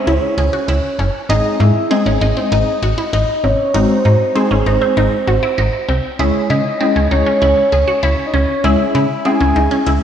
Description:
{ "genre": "pop", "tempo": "98 BPM", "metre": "4/4", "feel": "straight", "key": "C# harmonic minor", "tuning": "A4 = 440 Hz", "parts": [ { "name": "soft octave-layered synth lead", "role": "melody", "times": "0.0-10.0 s", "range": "G#4 to G#5", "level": "-17 LUFS", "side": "equal", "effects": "chorus, phaser, tape echo" }, { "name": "funky polysynth comp", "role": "accompaniment", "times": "0.0-10.0 s", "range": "G#3 to G#4", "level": "-19 LUFS", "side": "left 1 dB", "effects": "chorus" }, { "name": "resonant blip pluck", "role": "arpeggios", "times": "0.0-10.0 s", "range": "B#2 to G#4", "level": "-21 LUFS", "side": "equal", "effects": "phaser, tape echo" }, { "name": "slap-like FM bass", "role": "bass", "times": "0.1-10.0 s", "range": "F#1 to C#3", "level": "-15 LUFS", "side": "equal", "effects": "none" } ], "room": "wet lush hall reverb, RT60 2.9 s", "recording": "dreamy mix soaked in reverb", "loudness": "-12 LUFS", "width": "side -9 dB against mid", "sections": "0.0-10.0 A section", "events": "none", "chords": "0.0 C#m; 1.3 G#; 6.2 C#m", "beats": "0.07 0.68 | 1.29 1.91 2.52 3.13 | 3.74 4.36 4.97 5.58 | 6.19 6.80 7.42 8.03 | 8.64 9.25 9.87" }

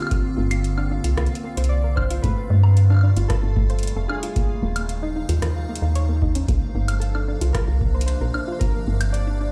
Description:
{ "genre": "IDM", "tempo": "113 BPM", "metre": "4/4", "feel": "straight", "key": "C dorian", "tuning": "A4 = 440 Hz", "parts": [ { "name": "warbly lo-fi synth keys", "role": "melody", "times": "0.0-9.5 s", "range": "F4 to D5", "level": "-36 LUFS", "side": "equal", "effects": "chorus, dub echo" }, { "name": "icy glass pad", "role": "sustained chords", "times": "0.0-9.5 s", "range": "C3 to F4", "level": "-34 LUFS", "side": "equal", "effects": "chorus, built-in reverb" }, { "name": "soft round pluck", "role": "arpeggios", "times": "0.0-9.5 s", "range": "A3 to Db5", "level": "-34 LUFS", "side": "equal", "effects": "chorus, digital delay" }, { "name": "electro analog drum machine", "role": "drums", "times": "0.0-9.2 s", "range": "hi-hat, rim click, woodblock", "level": "-34 LUFS", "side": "equal", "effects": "none" }, { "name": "pulsing gated texture", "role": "texture", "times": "0.0-9.5 s", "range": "F5", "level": "-43 LUFS", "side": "equal", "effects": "chorus, built-in reverb" }, { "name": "electronic kick drum", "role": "drums", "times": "0.1-8.7 s", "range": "none", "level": "-24 LUFS", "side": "equal", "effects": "none" }, { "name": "woody FM bass", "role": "bass", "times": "0.4-9.5 s", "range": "Eb1 to G2", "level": "-22 LUFS", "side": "equal", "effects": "tube saturation" } ], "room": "little or no reverb", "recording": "played on a big sound system in a bare room, stone room reverb", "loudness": "-21 LUFS", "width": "mono", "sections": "0.0-9.5 A section", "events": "none", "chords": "0.0 C9sus4; 2.2 G9sus4; 4.4 Eb9sus4; 6.5 C9sus4", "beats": "| 0.11 0.65 1.18 1.71 | 2.24 2.77 3.30 3.83 | 4.36 4.89 5.42 5.95 | 6.49 7.02 7.55 8.08 | 8.61 9.14" }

